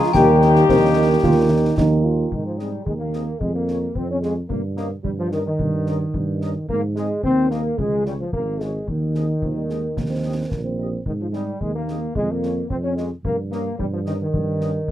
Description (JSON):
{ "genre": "military-style march for wind band", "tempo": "110 BPM", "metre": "2/4", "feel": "straight", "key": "Ab major", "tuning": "A4 = 439 Hz", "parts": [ { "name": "mellow trumpet section", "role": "melody", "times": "0.0-14.7 s", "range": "G4 to Eb5", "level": "-31 LUFS", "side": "left 3 dB", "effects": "none" }, { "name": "glockenspiel with soft plastic mallets", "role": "second line", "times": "0.0-2.0 s", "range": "G5 to Ab5", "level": "-23 LUFS", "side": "left 5 dB", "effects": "none" }, { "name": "mellow euphonium", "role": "second line", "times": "0.0-2.3, 9.4-11.0 s", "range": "F3 to G4", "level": "-24 LUFS", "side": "right 4 dB", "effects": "none" }, { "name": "warm French horn section", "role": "accompaniment", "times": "0.0-14.7 s", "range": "G3 to Bb4", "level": "-24 LUFS", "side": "left 3 dB", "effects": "none" }, { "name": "warm trombone section", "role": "sustained chords", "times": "0.0-14.9 s", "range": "Eb3 to Db4", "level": "-24 LUFS", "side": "equal", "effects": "none" }, { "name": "warm tuba", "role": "bass", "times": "0.1-14.9 s", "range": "Ab1 to Ab2", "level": "-22 LUFS", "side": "right 1 dB", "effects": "none" }, { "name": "concert snare drum, clash cymbals and concert bass drum", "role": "drums", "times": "0.1-14.9 s", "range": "none", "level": "-28 LUFS", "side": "equal", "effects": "none" } ], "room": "moderate booth ambience, RT60 0.2 s", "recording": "dark, warm production", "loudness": "-19 LUFS", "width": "side -12 dB against mid", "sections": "0.0-2.3 A section; 2.3-14.9 B section", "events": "none", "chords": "0.1 Eb; 2.3 Ab; 3.4 Db/F; 4.5 Eb7/G; 6.7 Ab; 7.8 Db; 8.9 Ab/Eb; 10.0 Eb; 11.1 Ab; 12.2 Db/F; 13.2 Eb7/G" }